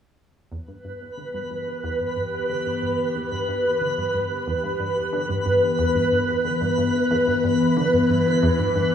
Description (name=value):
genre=ambient, sequencer-driven space music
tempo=91 BPM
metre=4/4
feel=straight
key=E minor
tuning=A4 = 440 Hz
part: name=evolving wavetable pad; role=sustained chords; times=1.3-8.9 s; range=E3 to G4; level=-25 LUFS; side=left 2 dB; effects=phaser, built-in reverb
part: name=tight sequenced synth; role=riff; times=0.5-8.8 s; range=E2 to D3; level=-28 LUFS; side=right 1 dB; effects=chorus, analog delay
part: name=twinkling granular texture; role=texture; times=0.9-8.9 s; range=B4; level=-23 LUFS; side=equal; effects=built-in reverb
room=wet huge ambient reverb, RT60 8.0 s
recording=cassette tape, studio reverb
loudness=-20 LUFS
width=side -8 dB against mid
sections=0.5-8.9 A section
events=fade-in on synth arpeggio sound 0.5-8.9; fade-in on ambient pad 0.5-8.9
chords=0.5 Em